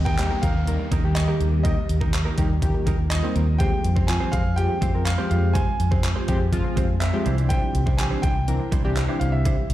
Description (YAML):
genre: dance-pop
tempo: 123 BPM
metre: 4/4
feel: straight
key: F dorian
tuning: A4 = 441 Hz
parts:
  - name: clear baby grand piano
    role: melody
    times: 0.0-9.7 s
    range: Eb5 to Ab5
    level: -31 LUFS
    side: equal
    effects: digital delay
  - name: ethereal airy pad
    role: sustained chords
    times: 0.6-9.7 s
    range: D3 to G4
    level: -34 LUFS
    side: right 1 dB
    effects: ensemble chorus, built-in reverb, sidechain pumping
  - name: vintage muted fingered electric bass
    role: bass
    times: 0.0-9.7 s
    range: C2 to F2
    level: -23 LUFS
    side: equal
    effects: sidechain pumping
  - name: downlifter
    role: sound effects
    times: 0.0-3.6 s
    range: none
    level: -38 LUFS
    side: equal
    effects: none
  - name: direct-recorded clean electric guitar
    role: riff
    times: 0.1-9.7 s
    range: G3 to C5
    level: -34 LUFS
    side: right 5 dB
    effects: lush chorus
  - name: pop drum kit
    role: drums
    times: 0.1-9.7 s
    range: handclaps, hi-hat, kick drum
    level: -24 LUFS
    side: equal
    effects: overdrive
  - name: warm analog keys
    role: accompaniment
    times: 0.2-9.6 s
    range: Eb3 to Bb4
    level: -28 LUFS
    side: left 1 dB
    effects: chorus, sidechain pumping
room: light reverb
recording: played on a big sound system in a bare room, large studio reverb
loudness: -20 LUFS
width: side -14 dB against mid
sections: 0.0-9.7 A section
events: none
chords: 0.0 Eb; 3.6 Fmadd9; 7.3 Cadd9